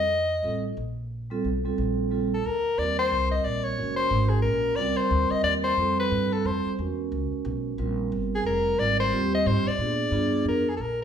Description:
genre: jazz, small-group swing and bop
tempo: 180 BPM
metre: 3/4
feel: swing 62% on 8ths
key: Eb major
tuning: A4 = 440 Hz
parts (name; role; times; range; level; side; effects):
- bright soprano saxophone; melody; 0.0-11.0 s; Ab4 to Eb5; -25 LUFS; left 2 dB; none
- upright bass; bass; 0.0-11.0 s; F1 to Bb2; -30 LUFS; equal; none
- vibraphone with medium mallets; accompaniment; 0.4-10.6 s; G3 to Bb4; -28 LUFS; right 4 dB; none
room: wet large studio reverb, RT60 0.9 s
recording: band playing live in one room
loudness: -23 LUFS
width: side -8 dB against mid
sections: 0.0-2.8 A section; 2.8-10.8 B section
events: none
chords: 0.0 F9; 0.8 Bbmaj7; 2.8 Eb; 3.8 Gbadd9; 4.8 Cm11; 5.8 Fadd9; 6.8 E; 7.8 Fsus24; 8.8 Abmaj7; 9.8 Bb7b9

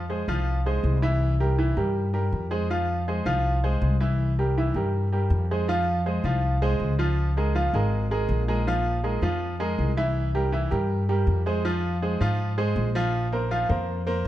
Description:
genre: latin, salsa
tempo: 161 BPM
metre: 4/4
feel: straight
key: F minor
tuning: A4 = 440 Hz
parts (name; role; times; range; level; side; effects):
- bright baby grand piano; accompaniment; 0.0-14.3 s; E3 to F5; -26 LUFS; right 1 dB; none
- upright bass; bass; 0.0-14.3 s; Ab1 to Ab2; -24 LUFS; left 1 dB; none
room: moderate large studio reverb, RT60 1.4 s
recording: dark, warm production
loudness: -22 LUFS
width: side -13 dB against mid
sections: 0.0-5.7 A section; 5.7-14.3 A section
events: none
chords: 0.0 Fm; 1.2 C7; 2.7 Fm; 4.2 C7; 5.7 Fm; 7.2 Db6; 8.7 Bb5; 10.2 C7; 11.7 Fm; 13.1 Bbsus2

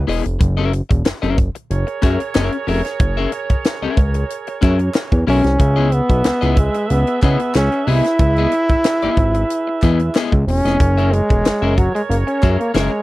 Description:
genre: funk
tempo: 92 BPM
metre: 4/4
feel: straight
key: unclear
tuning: A4 = 440 Hz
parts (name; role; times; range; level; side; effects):
- bright trombone; melody; 0.0, 5.3-13.0 s; F#3 to E4; -18 LUFS; equal; none
- warm horn section; second line; 0.0-13.0 s; G#4 to E5; -27 LUFS; right 6 dB; none
- fat analog bass; bass; 0.0-12.9 s; E1 to C#3; -17 LUFS; equal; none
- electric guitar at the edge of break-up; accompaniment; 0.1-13.0 s; B3 to E5; -21 LUFS; left 7 dB; none
- crisp fusion drum kit; drums; 0.1-12.9 s; hi-hat, kick drum, snare drum; -17 LUFS; equal; none
- group handclap; percussion; 1.1-12.9 s; none; -34 LUFS; left 4 dB; none
room: little or no reverb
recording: dry, close 1970s-style studio recording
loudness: -14 LUFS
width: side -18 dB against mid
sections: 0.0-13.0 A section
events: none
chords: 0.4 F#9; 5.6 C#m9; 10.8 F#9

